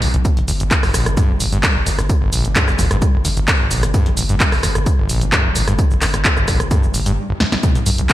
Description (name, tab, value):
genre	driving peak-time techno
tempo	130 BPM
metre	4/4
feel	straight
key	unclear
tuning	A4 = 443 Hz
part	screaming distorted acid line	riff	0.0-8.0 s	G1 to G2	-21 LUFS	equal	distortion, chorus, sidechain pumping, digital delay
part	saturated sub bass	bass	0.0-8.1 s	G1 to B1	-22 LUFS	equal	overdrive, sidechain pumping, low-pass filter
part	punchy analog drum machine	drums	0.0-8.1 s	handclaps, hi-hat, rim click, shaker, snare drum	-19 LUFS	equal	sidechain pumping on hats, sidechain pumping on perc, gated reverb
part	breakbeat sampler-style drum kit	drums	0.2-8.1 s	hi-hat, snare drum, tambourine	-30 LUFS	equal	none
part	electronic kick drum	drums	0.2-8.1 s	none	-17 LUFS	equal	none
part	sub drop	sound effects	7.6-8.1 s	none	-24 LUFS	equal	none
room	moderate plate reverb, RT60 1.2 s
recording	bright 1980s-style digital production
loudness	-14 LUFS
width	side -14 dB against mid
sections	0.0-7.6 A section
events	drum fill 7.4; impact 7.6-8.1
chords	none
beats	| 0.25 0.71 1.17 1.63 | 2.10 2.56 3.02 3.48 | 3.94 4.40 4.86 5.33 | 5.79 6.25 6.71 7.17 | 7.63 8.10